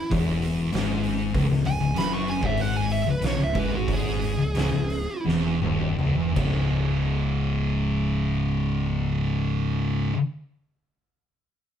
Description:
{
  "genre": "stoner and doom metal",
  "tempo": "76-98 BPM",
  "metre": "4/4",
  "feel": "straight",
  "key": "C# minor",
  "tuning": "A4 = 440 Hz",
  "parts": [
    { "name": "fuzz lead guitar", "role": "melody", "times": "0.0-5.2 s", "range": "F#4 to C#6", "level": "-29 LUFS", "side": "right 3 dB", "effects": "distortion" },
    { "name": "thick fuzz guitar", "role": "riff", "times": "0.1-10.2 s", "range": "C#2 to C#3", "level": "-25 LUFS", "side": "left 4 dB", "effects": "distortion" },
    { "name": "thick fuzz guitar", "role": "riff", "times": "0.1-10.2 s", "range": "C#2 to C#3", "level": "-29 LUFS", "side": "right 5 dB", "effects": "distortion" },
    { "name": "growling picked electric bass", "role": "bass", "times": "0.1-10.1 s", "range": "C#1 to B1", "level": "-31 LUFS", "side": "equal", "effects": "overdrive" },
    { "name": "oversized low-tuned drum kit", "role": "drums", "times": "0.1-6.5 s", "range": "crash cymbal, hi-hat, kick drum, snare drum, toms", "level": "-29 LUFS", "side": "right 1 dB", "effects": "none" }
  ],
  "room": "light reverb",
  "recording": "band playing live in one room",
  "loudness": "-22 LUFS",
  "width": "side -9 dB against mid",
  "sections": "0.0-6.8 A section; 6.8-9.9 B section",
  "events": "lead electric guitar solo 0.0-6.8; slowing down 1.3-6.8; drum fill 5.2-6.8",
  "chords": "0.0 C#m; 6.4 C#5"
}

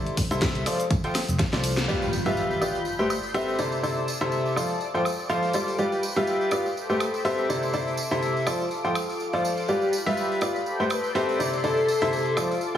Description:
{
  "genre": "piano house",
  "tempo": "123 BPM",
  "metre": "4/4",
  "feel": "swing 56% on 16ths",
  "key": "G mixolydian",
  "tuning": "A4 = 438 Hz",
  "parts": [
    { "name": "clear baby grand piano", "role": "riff", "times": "0.0-12.8 s", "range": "C3 to G5", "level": "-25 LUFS", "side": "equal", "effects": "sidechain pumping, low-pass filter, dub echo" },
    { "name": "fingered electric bass", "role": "bass", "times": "0.0-1.9 s", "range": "F1 to C2", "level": "-27 LUFS", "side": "equal", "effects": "sidechain pumping" },
    { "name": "garage drum kit", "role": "drums", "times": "0.1-12.5 s", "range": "cabasa, hi-hat, snare drum, woodblock", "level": "-31 LUFS", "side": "equal", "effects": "low-pass filter on hats, low-pass filter on perc, low-pass filter on snare" },
    { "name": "tambourine", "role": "percussion", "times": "0.1-12.8 s", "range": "none", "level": "-38 LUFS", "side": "right 3 dB", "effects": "none" },
    { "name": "electronic kick drum", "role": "drums", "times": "0.2-1.5 s", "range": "none", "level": "-26 LUFS", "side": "equal", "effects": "none" },
    { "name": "analog string pad", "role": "sustained chords", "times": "1.9-12.8 s", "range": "F4 to G6", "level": "-32 LUFS", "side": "left 2 dB", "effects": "ensemble chorus, sidechain pumping" },
    { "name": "impact", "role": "sound effects", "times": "1.9-3.8 s", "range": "none", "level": "-33 LUFS", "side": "left 1 dB", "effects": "none" },
    { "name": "breathy flute-like synth lead", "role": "melody", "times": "10.9-12.3 s", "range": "A4 to D5", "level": "-27 LUFS", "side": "left 2 dB", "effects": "ensemble chorus, dub echo" }
  ],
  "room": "moderate plate reverb, RT60 1.9 s, digital ambience",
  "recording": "heavily compressed radio sound, small room ambience",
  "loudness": "-23 LUFS",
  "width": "side -10 dB against mid",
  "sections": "0.0-1.9 A section; 1.9-12.8 B section",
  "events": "drum fill 1.4-1.9; band accent 1.8; impact 1.9-3.8",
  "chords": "0.0 C69; 0.7 F6; 1.9 G7; 2.9 Am11; 3.6 C69; 4.6 F6; 5.8 G7; 6.8 Am11; 7.5 C69; 8.5 F6; 9.7 G7; 10.7 Am11; 11.4 C69"
}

